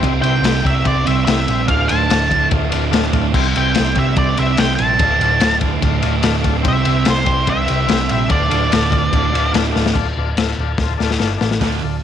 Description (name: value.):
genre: garage rock duo or trio.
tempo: 145 BPM.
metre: 4/4.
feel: straight.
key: D minor.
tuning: A4 = 440 Hz.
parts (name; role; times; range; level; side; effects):
combo organ; sustained chords; 0.0-12.0 s; E4 to E5; -26 LUFS; left 12 dB; none.
fuzz guitar; riff; 0.0-12.0 s; D2 to C4; -20 LUFS; right 12 dB; distortion.
hollow-body short-scale picked electric bass; bass; 0.0-12.0 s; D1 to C2; -20 LUFS; equal; none.
crunchy breakbeat drum kit; drums; 0.0-11.7 s; crash cymbal, hi-hat, kick drum, ride cymbal, snare drum; -19 LUFS; left 4 dB; none.
octave-fuzz lead guitar; melody; 0.2-9.5 s; C5 to A5; -19 LUFS; right 1 dB; distortion.
room: light reverb, small room ambience.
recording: 1960s-style stereo with parts hard left and right.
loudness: -14 LUFS.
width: side -9 dB against mid.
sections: 0.0-10.0 A section; 10.0-11.6 B section.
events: drum fill 9.8, 10.8-11.6.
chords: 0.0 C; 1.7 Dm; 3.3 C; 5.0 Dm; 6.7 C; 8.3 Dm.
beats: | 0.03 0.44 0.86 1.27 | 1.69 2.10 2.52 2.93 | 3.34 3.76 4.17 4.58 | 5.00 5.41 5.83 6.24 | 6.65 7.06 7.48 7.89 | 8.30 8.72 9.13 9.54 | 9.96 10.37 10.79 11.20 | 11.62.